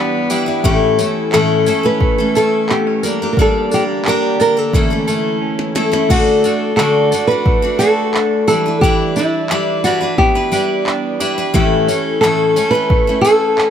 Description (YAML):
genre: acoustic pop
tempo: 88 BPM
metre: 4/4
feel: straight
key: D major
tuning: A4 = 436 Hz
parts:
  - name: rich cello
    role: second line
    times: 0.0-0.6 s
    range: B3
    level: -23 LUFS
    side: left 3 dB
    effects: none
  - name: picked steel-string acoustic guitar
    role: accompaniment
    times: 0.0-13.7 s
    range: A2 to B4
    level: -16 LUFS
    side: left 3 dB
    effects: none
  - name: glassy FM pad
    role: sustained chords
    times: 0.0-6.1 s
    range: D3 to A4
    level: -28 LUFS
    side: left 4 dB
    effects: ensemble chorus, built-in reverb
  - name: direct-recorded clean electric guitar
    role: arpeggios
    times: 0.0-13.7 s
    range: E3 to A4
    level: -22 LUFS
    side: right 6 dB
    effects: phaser
  - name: minimal click drum kit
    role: drums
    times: 0.3-13.7 s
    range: crash cymbal, handclaps, kick drum, snare drum, tambourine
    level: -19 LUFS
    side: equal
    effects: none
  - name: nylon-string guitar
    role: melody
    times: 0.7-13.7 s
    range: E4 to B4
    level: -16 LUFS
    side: right 1 dB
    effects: none
room: light reverb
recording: none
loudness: -12 LUFS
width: side -8 dB against mid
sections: 0.0-6.1 A section; 6.1-13.7 A section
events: drum fill 5.4-6.1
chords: 0.0 G6; 0.6 A; 3.0 Gm; 4.7 A; 6.1 D; 8.5 G6; 11.5 A